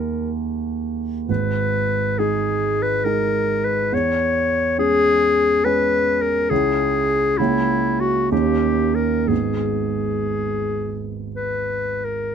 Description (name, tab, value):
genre	classical, romantic duo for clarinet and grand piano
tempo	57-70 BPM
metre	3/4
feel	rubato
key	G# minor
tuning	A4 = 440 Hz
part	clear clarinet	melody	0.0-12.3 s	E4 to C#5	-20 LUFS	left 3 dB	none
part	dark baby grand piano	accompaniment	0.0-12.3 s	G#1 to G#4	-22 LUFS	right 4 dB	none
room	light reverb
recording	close, detailed microphones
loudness	-18 LUFS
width	side -7 dB against mid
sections	0.0-12.3 A section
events	none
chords	0.0 D#; 1.3 G#m; 3.9 C#m/E; 6.5 C#m; 7.4 A#dim/C#; 8.3 D#7; 9.3 G#m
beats	0.35 | 1.29 2.18 3.06 | 3.92 4.78 5.64 | 6.51 7.38 8.31 | 9.30 10.34 11.36